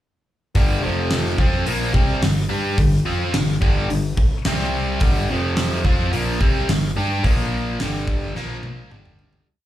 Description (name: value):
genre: hard rock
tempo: 108 BPM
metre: 4/4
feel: straight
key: G minor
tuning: A4 = 444 Hz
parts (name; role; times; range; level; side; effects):
- overdriven electric guitar; riff; 0.6-9.5 s; F2 to G4; -22 LUFS; equal; slapback echo
- fuzz picked electric bass; bass; 0.6-9.4 s; F1 to G2; -25 LUFS; equal; overdrive
- gated 80s drum kit; drums; 0.6-9.5 s; hi-hat, kick drum, snare drum, toms; -21 LUFS; equal; none
room: light reverb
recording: live gig heard through the venue's PA, club reverb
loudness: -18 LUFS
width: side -13 dB against mid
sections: 0.6-9.5 riff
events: fade-out 7.2-9.5; drum fill 8.4-9.5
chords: 0.6 G5; 0.8 F5; 1.4 Gm; 4.5 C5; 5.0 G5; 5.3 F5; 5.8 Gm; 7.2 Bb5; 7.8 G5; 8.4 Bb5; 8.9 G5